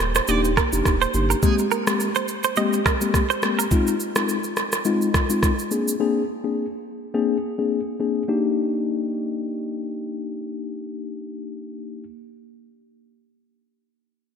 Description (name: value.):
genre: afrobeats.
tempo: 105 BPM.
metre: 4/4.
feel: swing 55% on 16ths.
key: Eb major.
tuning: A4 = 438 Hz.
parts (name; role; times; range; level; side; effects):
warm sub bass; bass; 0.0-1.3 s; Eb1 to G1; -25 LUFS; equal; none.
afro-pop drum kit; drums; 0.0-6.0 s; kick drum, rim click, shaker; -23 LUFS; right 1 dB; gated reverb.
direct-recorded clean electric guitar; riff; 0.2-3.7 s; Ab4 to Eb5; -25 LUFS; right 7 dB; wide subtle chorus, digital delay.
mellow tine electric piano; accompaniment; 0.3-12.0 s; Ab3 to Ab4; -23 LUFS; left 3 dB; slow stereo tremolo.
room: wet lush hall reverb, RT60 2.8 s.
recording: bright 1980s-style digital production.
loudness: -20 LUFS.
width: side -7 dB against mid.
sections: 0.0-8.3 A section; 8.3-10.6 B section.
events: none.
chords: 0.0 Ebmaj7; 1.4 Abmaj9; 3.7 Fm7; 5.7 Bb9; 8.3 Ebmaj7.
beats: 0.29 0.86 | 1.43 2.00 2.57 3.14 | 3.71 4.29 4.86 5.43 | 6.00 6.57 7.14 7.71 | 8.29 8.86 9.43 10.00.